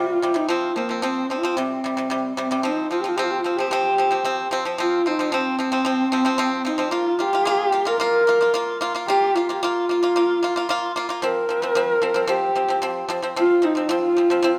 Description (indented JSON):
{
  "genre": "mongolian traditional, Mongolian folk",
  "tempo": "112 BPM",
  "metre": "4/4",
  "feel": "straight",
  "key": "unclear",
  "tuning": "A4 = 440 Hz",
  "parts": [
    { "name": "dark horsehead fiddle", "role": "melody", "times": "0.0-14.6 s", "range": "Bb3 to Bb4", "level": "-23 LUFS", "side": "equal", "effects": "none" },
    { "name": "pipa", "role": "arpeggios", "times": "0.0-14.6 s", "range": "C3 to F4", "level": "-26 LUFS", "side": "equal", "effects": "none" }
  ],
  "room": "moderate scoring stage reverb, RT60 1.5 s",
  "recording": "close, detailed microphones",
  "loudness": "-21 LUFS",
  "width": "mono",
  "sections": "0.0-2.6 A section; 2.6-14.6 B section",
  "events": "none",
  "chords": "0.5 F5; 1.6 C5; 2.6 F5; 6.9 Bb5; 11.2 F5"
}